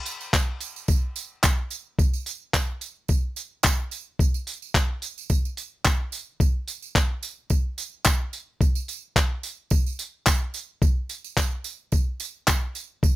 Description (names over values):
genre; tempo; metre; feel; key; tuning
pop; 109 BPM; 4/4; swing 55% on 16ths; none; none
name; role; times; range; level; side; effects
dusty soul sampler-style drum kit; drums; 0.1-13.2 s; handclaps, kick drum, tambourine; -22 LUFS; equal; none
tambourine; percussion; 0.1-13.2 s; none; -32 LUFS; right 10 dB; none
room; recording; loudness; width
little or no reverb; none; -23 LUFS; side -16 dB against mid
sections
0.0-13.2 A section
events
none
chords
none